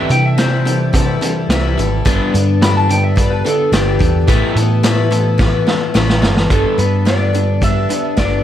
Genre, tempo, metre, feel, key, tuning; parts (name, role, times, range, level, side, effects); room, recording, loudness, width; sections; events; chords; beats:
folk rock and heartland rock; 108 BPM; 4/4; straight; G major; A4 = 438 Hz
electric slide guitar; melody; 0.0-8.4 s; G4 to B5; -20 LUFS; equal; analog delay
picked twelve-string acoustic guitar; accompaniment; 0.0-8.4 s; A2 to A4; -20 LUFS; left 6 dB; analog delay
crunchy overdriven guitar; riff; 0.0-8.4 s; G2 to B3; -22 LUFS; right 1 dB
hollow-body short-scale fingered electric bass; bass; 0.1-8.4 s; G1 to C3; -16 LUFS; right 1 dB
vintage drum kit; drums; 0.1-8.3 s; hi-hat, kick drum, snare drum; -17 LUFS; right 1 dB
studio ambience; echo-heavy mix; -12 LUFS; side -11 dB against mid
0.0-6.5 A section; 6.5-8.4 B section
electric slide guitar solo 0.0-6.5; drum fill 5.4-6.5
0.0 C6; 2.1 Gadd9; 4.3 Asus2; 6.5 Gadd9
0.38 0.94 1.50 | 2.05 2.61 3.17 3.73 | 4.28 4.84 5.40 5.96 | 6.51 7.07 7.63 8.19